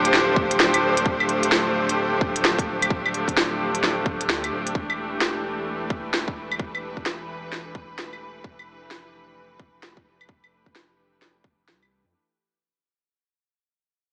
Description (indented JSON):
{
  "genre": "future garage",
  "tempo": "130 BPM",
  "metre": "4/4",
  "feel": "swing 62% on 16ths",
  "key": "D dorian",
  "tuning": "A4 = 443 Hz",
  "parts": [
    { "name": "rich studio string section", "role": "sustained chords", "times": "0.0-12.1 s", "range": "E3 to C5", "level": "-26 LUFS", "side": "equal", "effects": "vintage 12-bit sampler grit, sidechain pumping" },
    { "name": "soft dub sub bass", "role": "bass", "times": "0.0-12.1 s", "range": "D1 to F2", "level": "-42 LUFS", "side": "equal", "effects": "sidechain pumping" },
    { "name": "organic electronic drum kit", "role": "drums", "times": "0.1-11.9 s", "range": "claves, hi-hat, snare drum", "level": "-25 LUFS", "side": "equal", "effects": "none" },
    { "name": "electronic kick drum", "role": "drums", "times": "0.4-11.6 s", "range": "none", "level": "-29 LUFS", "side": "equal", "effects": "none" }
  ],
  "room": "moderate lush hall reverb, RT60 1.8 s",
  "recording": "small speaker sound",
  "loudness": "-23 LUFS",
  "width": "mono",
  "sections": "0.0-12.1 A section",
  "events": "fade-out 0.0-12.1",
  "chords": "0.0 Dm7; 4.8 A9sus4/E; 8.4 Fmaj9"
}